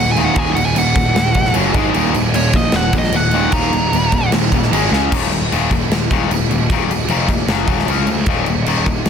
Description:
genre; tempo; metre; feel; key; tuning
hard rock; 152 BPM; 4/4; straight; Eb minor; A4 = 439 Hz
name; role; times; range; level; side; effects
dark smooth lead guitar; melody; 0.0-4.3 s; Db5 to Bb5; -21 LUFS; equal; overdrive, digital delay
overdriven electric guitar; riff; 0.0-9.1 s; Eb2 to Db4; -20 LUFS; left 10 dB; none
overdriven semi-hollow guitar; riff; 0.0-5.1 s; Eb2 to Db4; -21 LUFS; right 10 dB; none
fuzz picked electric bass; bass; 0.0-9.1 s; Eb1 to D2; -20 LUFS; right 1 dB; overdrive
huge arena drum kit; drums; 0.2-9.1 s; crash cymbal, kick drum, snare drum; -18 LUFS; right 1 dB; soft clipping on kick
room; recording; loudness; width
small room ambience; dense, heavily limited modern master; -13 LUFS; side -7 dB against mid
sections
0.0-5.1 A section; 5.1-9.1 B section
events
lead electric guitar solo 0.0-5.1; drum fill 4.9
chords
0.0 Ebm; 1.6 Gb5; 1.8 Ab5; 2.0 Ebm; 4.7 Ab5; 4.9 Db5; 5.1 Eb5; 7.5 Gb5; 7.9 Db5; 8.3 Eb5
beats
| 0.37 0.76 1.16 1.56 | 1.95 2.35 2.74 3.14 | 3.54 3.93 4.33 4.72 | 5.12 5.51 5.91 6.31 | 6.70 7.10 7.49 7.89 | 8.29 8.68 9.08

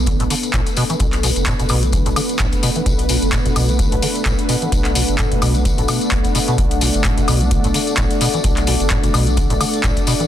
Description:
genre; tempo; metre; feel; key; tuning
acid house; 129 BPM; 4/4; swing 56% on 16ths; unclear; A4 = 439 Hz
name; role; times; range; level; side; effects
warm analog pad; sustained chords; 0.0-10.3 s; A3 to D5; -24 LUFS; right 1 dB; chorus, sidechain pumping
warm sub bass; bass; 0.0-9.9 s; F#1 to B1; -21 LUFS; equal; sidechain pumping
deep dark ambient pad; texture; 0.0-10.3 s; B3 to G#5; -23 LUFS; left 1 dB; chorus, built-in reverb, sidechain pumping
acid bass, square; riff; 0.1-10.3 s; A2 to B3; -22 LUFS; equal; analog chorus, sidechain pumping, ping-pong delay
electro analog drum machine; drums; 0.1-10.3 s; handclaps, hi-hat, woodblock; -23 LUFS; left 1 dB; none
electronic kick drum; drums; 0.1-10.1 s; none; -20 LUFS; equal; none
tambourine; percussion; 0.1-10.3 s; none; -28 LUFS; left 5 dB; none
room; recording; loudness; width
light reverb, digital ambience; dense, heavily limited modern master; -14 LUFS; side -11 dB against mid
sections
0.0-10.3 A section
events
none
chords
0.0 Bm7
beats
0.07 0.54 | 1.00 1.47 1.93 2.40 | 2.86 3.33 3.79 4.26 | 4.72 5.19 5.65 6.12 | 6.58 7.05 7.51 7.98 | 8.44 8.91 9.37 9.84

